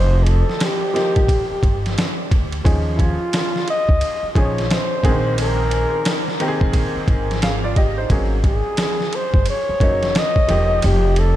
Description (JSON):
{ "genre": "hip hop, jazz-hop", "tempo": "88 BPM", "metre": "4/4", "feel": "swing 63% on 16ths", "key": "unclear", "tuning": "A4 = 440 Hz", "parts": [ { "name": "mellow flugelhorn", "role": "melody", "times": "0.0-11.4 s", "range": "Fb4 to Eb5", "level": "-22 LUFS", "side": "left 1 dB", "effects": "ping-pong delay" }, { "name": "upright bass", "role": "bass", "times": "0.0-11.3 s", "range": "Fb1 to Eb2", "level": "-20 LUFS", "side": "equal", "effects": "none" }, { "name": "boom bap sampler-style drum kit", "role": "drums", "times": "0.3-11.4 s", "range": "hi-hat, kick drum, ride cymbal, snare drum", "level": "-20 LUFS", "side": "equal", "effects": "none" }, { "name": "clear upright piano", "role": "accompaniment", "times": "0.9-11.0 s", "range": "D3 to F5", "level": "-25 LUFS", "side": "equal", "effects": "none" } ], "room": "light reverb, studio reverb", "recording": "none", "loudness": "-16 LUFS", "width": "side -13 dB against mid", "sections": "0.0-11.4 A section", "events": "none", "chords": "0.0 F9sus4; 2.6 Eb9sus4; 5.0 Bb9sus4; 8.1 Ab9sus4; 10.8 F9sus4", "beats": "0.60 1.28 1.97 | 2.65 3.33 4.01 4.69 | 5.37 6.06 6.74 7.42 | 8.10 8.78 9.46 10.15 | 10.83" }